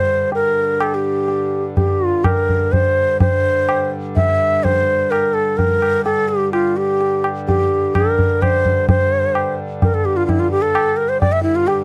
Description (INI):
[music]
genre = indian classical, Hindustani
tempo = 127 BPM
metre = 3/4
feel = straight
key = G raga bageshri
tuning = A4 = 439 Hz
[part]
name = breathy bansuri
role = melody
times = 0.0-11.8 s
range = E4 to E5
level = -19 LUFS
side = equal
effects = none
[part]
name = pedal harmonium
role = drone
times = 0.0-11.8 s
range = G2 to D3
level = -28 LUFS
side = equal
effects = none
[part]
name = tabla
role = percussion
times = 0.3-11.8 s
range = none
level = -22 LUFS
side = equal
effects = none
[sound]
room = little or no reverb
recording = dry, close 1970s-style studio recording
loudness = -17 LUFS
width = mono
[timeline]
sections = 0.0-3.2 A section; 3.2-11.8 B section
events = speeding up 0.0-11.8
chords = none